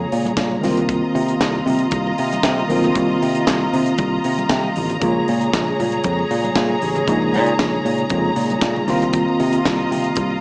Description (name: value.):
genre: disco.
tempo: 116 BPM.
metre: 4/4.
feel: straight.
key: Bb minor.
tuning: A4 = 440 Hz.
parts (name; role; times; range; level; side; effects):
tine electric piano; accompaniment; 0.0-10.4 s; C3 to F4; -20 LUFS; equal; overdrive, fast stereo tremolo.
warm studio string section; sustained chords; 0.0-10.4 s; F4 to Bb5; -22 LUFS; equal; none.
fingered electric bass; bass; 0.0-10.4 s; A1 to C3; -21 LUFS; equal; none.
tight funk drum kit; drums; 0.1-10.3 s; handclaps, hi-hat, kick drum, snare drum; -24 LUFS; equal; none.
congas; percussion; 0.3-10.4 s; none; -30 LUFS; equal; none.
room: light reverb.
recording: small speaker sound.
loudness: -16 LUFS.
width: side -28 dB against mid.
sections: 0.0-10.4 A section.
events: none.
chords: 0.0 Bbm7; 0.6 F7sus4; 5.0 Bbm7; 8.9 F7sus4.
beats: 0.37 | 0.89 1.40 1.92 2.43 | 2.95 3.46 3.98 4.50 | 5.01 5.53 6.04 6.56 | 7.07 7.59 8.10 8.62 | 9.13 9.65 10.16.